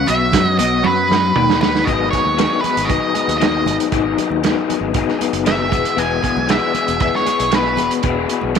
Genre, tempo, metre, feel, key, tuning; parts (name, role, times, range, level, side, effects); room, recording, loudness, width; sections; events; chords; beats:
psychedelic rock; 117 BPM; 4/4; straight; A4 = 440 Hz
octave-fuzz lead guitar; melody; 0.0-7.9 s; B4 to G#5; -19 LUFS; right 1 dB; distortion, tape echo
tonewheel organ; sustained chords; 0.0-1.8 s; B3 to C#5; -29 LUFS; right 12 dB; slow rotary speaker, chorus vibrato
electric guitar through a small old amp; riff; 0.0-8.6 s; E2 to G#4; -19 LUFS; left 10 dB; rotary speaker
growling fingered electric bass; bass; 0.0-8.6 s; E1 to F#2; -24 LUFS; right 2 dB; overdrive
vintage drum kit; drums; 0.1-8.6 s; hi-hat, kick drum, snare drum, toms; -20 LUFS; right 6 dB
congas; percussion; 0.1-8.5 s; -31 LUFS; right 13 dB
light reverb, small room ambience; 1960s-style stereo with parts hard left and right; -14 LUFS; side -7 dB against mid
0.0-1.9 A section; 1.9-8.6 B section
drum fill 0.8-1.9
0.0 B; 1.9 G#m7; 5.7 E
0.34 0.85 1.36 | 1.87 2.38 2.90 3.41 | 3.92 4.44 4.95 5.46 | 5.98 6.49 7.01 7.52 | 8.04 8.55